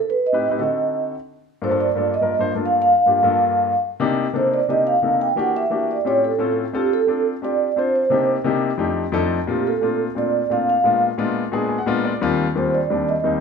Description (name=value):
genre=jazz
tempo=175 BPM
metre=4/4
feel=straight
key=G minor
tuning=A4 = 444 Hz
part: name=vibraphone with soft mallets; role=melody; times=0.0-13.4 s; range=G4 to G5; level=-18 LUFS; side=right 2 dB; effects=none
part: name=warm grand piano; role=accompaniment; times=0.3-13.4 s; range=Eb2 to Ab5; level=-22 LUFS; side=left 4 dB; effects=none
room=moderate large studio reverb, RT60 1.0 s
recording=minimal, uncompressed stereo recording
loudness=-17 LUFS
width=side -6 dB against mid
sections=0.0-4.0 A section; 4.0-13.4 B section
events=grand piano fill 11.5-12.2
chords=0.0 Am7b5; 0.6 D7b9; 1.3 Gm9; 4.0 Cm7; 5.4 Em7b5; 6.1 A7alt; 6.7 Dm7; 8.1 Cm7; 8.8 F13; 9.5 Bbmaj7; 10.9 Bb7b9; 12.2 Eb6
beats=0.24 0.58 0.93 | 1.27 1.61 1.96 2.30 | 2.64 2.98 3.33 3.67 | 4.01 4.35 4.69 5.04 | 5.38 5.72 6.06 6.41 | 6.75 7.09 7.43 7.77 | 8.12 8.46 8.80 9.14 | 9.48 9.82 10.17 10.51 | 10.85 11.19 11.53 11.88 | 12.22 12.56 12.90 13.24